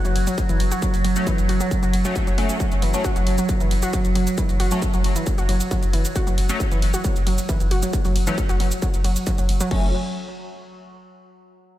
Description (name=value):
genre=driving peak-time techno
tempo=135 BPM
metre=4/4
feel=straight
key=F# minor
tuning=A4 = 439 Hz
part: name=warbly dusty pluck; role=riff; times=0.0-9.9 s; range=E3 to F#4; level=-26 LUFS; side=equal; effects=chorus, sidechain pumping, ping-pong delay
part: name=overtone-sweeping drone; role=drone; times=0.0-9.8 s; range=F#3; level=-29 LUFS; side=right 3 dB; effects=chorus, built-in reverb, sidechain pumping
part: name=punchy analog drum machine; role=drums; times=0.0-9.8 s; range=crash cymbal, hi-hat, ride cymbal, shaker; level=-32 LUFS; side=right 2 dB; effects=sidechain pumping on hats, sidechain pumping on cymbals, sidechain pumping on perc
part: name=saturated sub bass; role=bass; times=0.1-9.9 s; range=F#1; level=-24 LUFS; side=equal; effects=overdrive, sidechain pumping, low-pass filter
part: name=electronic kick drum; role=drums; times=0.4-9.8 s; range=none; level=-23 LUFS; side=equal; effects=distortion
part: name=sync-sweep polysynth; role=stabs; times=1.2-9.9 s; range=F#3 to C#4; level=-30 LUFS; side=left 3 dB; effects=analog chorus, sidechain pumping, ping-pong delay
room=light reverb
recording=none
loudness=-18 LUFS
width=side -14 dB against mid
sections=0.0-9.7 A section; 9.7-11.5 B section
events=drop 0.0-9.7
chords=none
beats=0.38 | 0.82 1.27 1.71 2.16 | 2.60 3.05 3.49 3.94 | 4.38 4.82 5.27 5.71 | 6.16 6.60 7.05 7.49 | 7.93 8.38 8.82 9.27 | 9.71